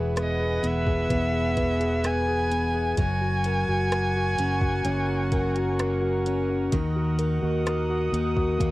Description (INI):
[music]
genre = pop ballad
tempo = 64 BPM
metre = 4/4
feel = straight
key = unclear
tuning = A4 = 442 Hz
[part]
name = tine electric piano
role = accompaniment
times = 0.0-8.7 s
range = D#3 to B4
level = -27 LUFS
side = left 1 dB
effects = lush chorus, cassette tape
[part]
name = warm studio string section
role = sustained chords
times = 0.0-8.7 s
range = A#4 to D#6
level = -35 LUFS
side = right 1 dB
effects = cassette tape
[part]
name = picked steel-string acoustic guitar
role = arpeggios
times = 0.0-8.7 s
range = F#2 to F#4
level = -38 LUFS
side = right 5 dB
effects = cassette tape
[part]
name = fingered electric bass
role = bass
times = 0.0-8.7 s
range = E1 to D#2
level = -28 LUFS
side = equal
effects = none
[part]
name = warm violin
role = melody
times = 0.2-5.8 s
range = D#5 to G#5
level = -29 LUFS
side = equal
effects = cassette tape
[part]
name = smooth R&B drum kit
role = drums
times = 0.2-8.7 s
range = hi-hat, kick drum, rim click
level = -28 LUFS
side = equal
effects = none
[sound]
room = light reverb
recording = home recording on cassette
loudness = -22 LUFS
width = side -18 dB against mid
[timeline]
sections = 0.0-8.7 A section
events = none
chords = 0.0 Eadd9; 3.0 F#add9; 6.7 D#m